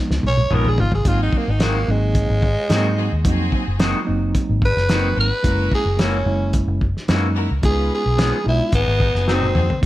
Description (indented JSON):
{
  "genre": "straight-eighth soul blues",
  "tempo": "109 BPM",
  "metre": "4/4",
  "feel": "straight",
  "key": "unclear",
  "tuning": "A4 = 439 Hz",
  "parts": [
    { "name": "mellow reed electric piano", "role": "accompaniment", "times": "0.0-9.9 s", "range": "F3 to Gb4", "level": "-25 LUFS", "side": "right 2 dB", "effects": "fast tremolo" },
    { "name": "vintage muted fingered electric bass", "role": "bass", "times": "0.1-9.9 s", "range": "Gb1 to Ab2", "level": "-20 LUFS", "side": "equal", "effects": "none" },
    { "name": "cloth-damped thuddy drum kit", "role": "drums", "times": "0.1-9.9 s", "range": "hi-hat, kick drum, snare drum, toms", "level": "-21 LUFS", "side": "equal", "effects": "none" },
    { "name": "growling tenor saxophone", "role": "melody", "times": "0.3-9.8 s", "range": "Ab3 to Db5", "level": "-22 LUFS", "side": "right 1 dB", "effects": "none" },
    { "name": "electric guitar through a small old amp", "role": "stabs", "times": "0.5-9.5 s", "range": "Eb3 to Ab4", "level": "-26 LUFS", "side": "left 3 dB", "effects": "none" },
    { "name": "clear symphonic string section", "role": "sustained chords", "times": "1.1-9.7 s", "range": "C4 to Cb5", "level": "-31 LUFS", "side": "left 2 dB", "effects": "none" }
  ],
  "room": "light reverb",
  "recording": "none",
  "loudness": "-16 LUFS",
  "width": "side -15 dB against mid",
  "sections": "0.0-9.8 A section",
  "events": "drum fill 0.0-1.1, 9.3-9.8; tenor saxophone solo 0.0-9.8",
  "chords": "0.0 Db7; 1.1 Ab7; 5.4 Gb7; 7.6 Db7; 8.7 Ab7",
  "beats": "0.51 | 1.06 1.60 2.15 2.70 | 3.25 3.80 4.35 4.89 | 5.44 5.99 6.54 7.09 | 7.64 8.19 8.73 9.28 | 9.83"
}